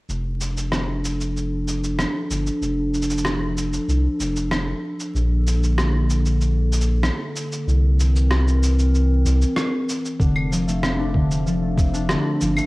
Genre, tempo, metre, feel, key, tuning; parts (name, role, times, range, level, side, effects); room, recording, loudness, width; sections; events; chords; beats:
folktronica; 95 BPM; 4/4; straight; F major; A4 = 440 Hz
warbly tape-like pad; sustained chords; 0.1-12.7 s; D3 to Bb4; -26 LUFS; equal; chorus, built-in reverb, cassette tape
round analog bass; bass; 0.1-12.6 s; F1 to C2; -20 LUFS; equal; transformer saturation
electronic shaker, rim click and claves; drums; 0.1-12.7 s; -27 LUFS; equal; cassette tape
concert harp; arpeggios; 10.2-12.7 s; D3 to D4; -22 LUFS; left 1 dB; cassette tape, analog delay
electronic kick drum; drums; 10.2-11.9 s; -20 LUFS; equal; cassette tape
light reverb; home recording on cassette, vinyl crackle; -19 LUFS; side -21 dB against mid
0.1-10.2 A section; 10.2-12.7 B section
break 9.6-10.2
0.1 F6; 5.1 Bbmaj7; 7.7 C7; 10.2 F6
| 0.09 0.72 1.35 1.99 | 2.62 3.25 3.88 4.51 | 5.14 5.78 6.41 7.04 | 7.67 8.30 8.93 9.56 | 10.20 10.83 11.46 12.09